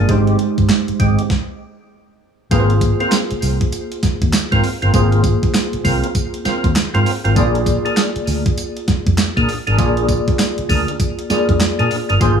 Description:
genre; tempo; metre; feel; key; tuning
R&B, new jack swing; 99 BPM; 4/4; swing 62% on 16ths; unclear; A4 = 440 Hz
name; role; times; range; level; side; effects
tine electric piano; accompaniment; 0.0-12.4 s; Ab3 to D5; -21 LUFS; equal; overdrive, fast stereo tremolo
percussive tonewheel organ; stabs; 0.0-12.4 s; Ab3 to C5; -22 LUFS; right 2 dB; chorus vibrato, slow rotary speaker, digital delay
vintage muted fingered electric bass; bass; 0.0-12.4 s; G1 to Bb2; -17 LUFS; left 1 dB; none
crisp 8-bit digital drum machine; drums; 0.1-12.4 s; handclaps, hi-hat, kick drum, snare drum, tambourine; -18 LUFS; right 1 dB; overdrive
room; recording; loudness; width
little or no reverb; studio ambience; -14 LUFS; side -7 dB against mid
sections
0.0-2.5 A section; 2.5-12.4 B section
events
stop 1.3-2.5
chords
0.1 Abmaj7; 2.5 Ab69; 7.4 Bb7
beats
| 0.09 0.69 1.30 1.91 | 2.51 3.12 3.73 4.33 | 4.94 5.54 6.15 6.75 | 7.36 7.97 8.57 9.18 | 9.79 10.39 11.00 11.60 | 12.21

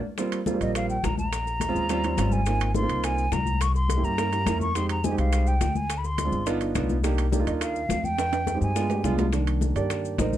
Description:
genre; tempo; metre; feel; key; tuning
Afro-Cuban jazz; 210 BPM; 4/4; straight; Eb major; A4 = 435 Hz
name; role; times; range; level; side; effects
warm grand piano; accompaniment; 0.2-10.4 s; Eb3 to Eb5; -28 LUFS; right 3 dB; none
bongos; percussion; 0.2-10.3 s; none; -37 LUFS; left 7 dB; none
congas; percussion; 0.2-10.4 s; none; -33 LUFS; left 4 dB; none
maracas; percussion; 0.2-10.4 s; none; -41 LUFS; left 7 dB; none
timbales; percussion; 0.2-10.3 s; none; -35 LUFS; right 4 dB; none
mellow hollow silver concert flute; melody; 0.6-9.2 s; Eb5 to Db6; -29 LUFS; equal; none
upright bass; bass; 0.6-10.4 s; G1 to G2; -26 LUFS; left 1 dB; none
room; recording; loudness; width
light reverb; dark, warm production; -23 LUFS; side -12 dB against mid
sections
0.2-9.3 A section; 9.3-10.4 B section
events
drum fill 0.0, 8.2-9.3; band accent 0.0; grand piano solo 9.3-10.4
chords
0.2 Eb69 (rootless); 1.3 Bbm7; 1.9 Eb13; 2.5 Ab69; 3.6 C7b9; 4.8 Fm7; 5.9 Dm7b5; 6.5 G7b13; 7.0 Cm9; 8.2 Fm9; 8.8 G7b9; 9.3 Cm9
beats
| 0.18 0.47 0.75 1.04 | 1.32 1.61 1.90 2.18 | 2.47 2.75 3.04 3.33 | 3.61 3.90 4.18 4.47 | 4.75 5.04 5.33 5.61 | 5.90 6.18 6.47 6.75 | 7.04 7.33 7.61 7.90 | 8.18 8.47 8.76 9.04 | 9.33 9.61 9.90 10.19

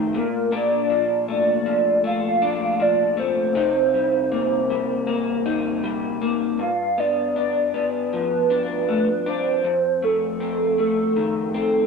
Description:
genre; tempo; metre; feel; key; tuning
indie pop; 79 BPM; 4/4; straight; unclear; A4 = 440 Hz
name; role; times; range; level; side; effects
electric guitar through a small old amp; accompaniment; 0.0-11.9 s; F2 to Eb4; -24 LUFS; left 4 dB; lush chorus, vibrato effect
hollow clarinet-like synth lead; melody; 0.2-11.9 s; A4 to F5; -20 LUFS; right 2 dB; analog chorus
room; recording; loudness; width
moderate spring reverb, RT60 1.4 s, digital ambience; dark, warm production; -19 LUFS; side -4 dB against mid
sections
0.0-6.6 A section; 6.6-11.9 B section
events
none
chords
0.1 Bbmaj7; 3.6 Cm7; 6.6 G7; 9.6 F7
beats
| 0.53 1.28 2.04 2.80 | 3.56 4.32 5.08 5.84 | 6.60 7.36 8.12 8.88 | 9.64 10.40 11.16

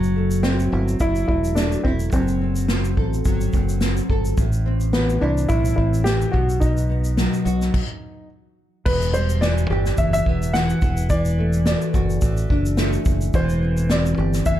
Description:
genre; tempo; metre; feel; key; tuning
acoustic pop; 107 BPM; 4/4; swing 55% on 16ths; E minor; A4 = 440 Hz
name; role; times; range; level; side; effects
nylon-string guitar; accompaniment; 0.0-14.6 s; E2 to A4; -23 LUFS; left 1 dB; double-tracked left and right
fingered electric bass; bass; 0.0-14.6 s; E1 to C2; -22 LUFS; equal; none
unplugged drum kit; drums; 0.0-14.6 s; crash cymbal, kick drum, shaker, snare drum; -24 LUFS; equal; none
dark upright piano; melody; 0.4-14.6 s; B3 to F#5; -25 LUFS; equal; plate reverb
room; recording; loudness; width
light reverb; dark, warm production; -18 LUFS; side -12 dB against mid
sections
0.0-8.9 A section; 8.9-14.6 B section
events
stop 7.7-8.9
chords
0.0 F#m7b5; 2.1 F#dim; 4.4 Am; 6.3 B; 8.9 Em; 10.8 D/E; 13.3 Cadd9/E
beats
0.44 1.01 1.57 | 2.13 2.69 3.25 3.82 | 4.38 4.94 5.50 6.06 | 6.62 7.18 7.74 8.30 | 8.86 9.42 9.98 10.54 | 11.10 11.66 12.22 12.78 | 13.34 13.90 14.46

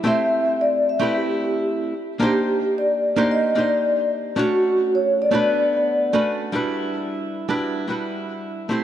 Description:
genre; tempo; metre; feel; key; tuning
chillout; 111 BPM; 4/4; swing 54% on 16ths; E minor; A4 = 441 Hz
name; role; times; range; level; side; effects
archtop guitar, miked and amplified; accompaniment; 0.0-8.8 s; G3 to C#5; -23 LUFS; right 2 dB; auto-pan, digital delay
vibraphone with soft mallets; melody; 0.1-6.2 s; F#4 to E5; -20 LUFS; left 1 dB; digital delay
room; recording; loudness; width
moderate lush hall reverb, RT60 2.7 s; dark, warm production; -19 LUFS; side -11 dB against mid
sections
0.0-6.5 A section; 6.5-8.8 B section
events
none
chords
0.1 Am9; 1.9 Cm9; 4.4 Bm9; 6.5 Em9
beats
| 0.06 0.60 1.14 1.68 | 2.22 2.76 3.30 3.84 | 4.38 4.92 5.46 6.00 | 6.54 7.08 7.62 8.16 | 8.71

